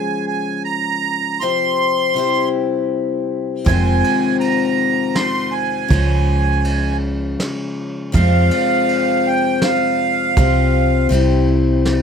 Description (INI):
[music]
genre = acoustic folk duo or small band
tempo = 80 BPM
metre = 3/4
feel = straight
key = F minor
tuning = A4 = 440 Hz
[part]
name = accordion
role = melody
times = 0.0-11.1 s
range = F5 to C6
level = -19 LUFS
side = right 6 dB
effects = none
[part]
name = picked steel-string acoustic guitar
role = accompaniment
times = 0.0-12.0 s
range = F2 to Ab4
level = -19 LUFS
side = left 5 dB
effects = none
[part]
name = hollow-body short-scale fingered electric bass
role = bass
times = 3.7-12.0 s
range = F1 to F2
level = -16 LUFS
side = right 1 dB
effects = none
[part]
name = soft brush drum kit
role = drums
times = 3.7-12.0 s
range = kick drum, ride cymbal, snare drum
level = -24 LUFS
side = right 1 dB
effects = none
[sound]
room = light reverb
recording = close, detailed microphones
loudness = -15 LUFS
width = side -7 dB against mid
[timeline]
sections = 0.0-12.0 A section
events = none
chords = 0.0 Db; 1.4 Csus4; 2.2 C; 3.7 Fm7; 5.9 Db; 8.1 Fm; 10.4 Csus4; 11.1 C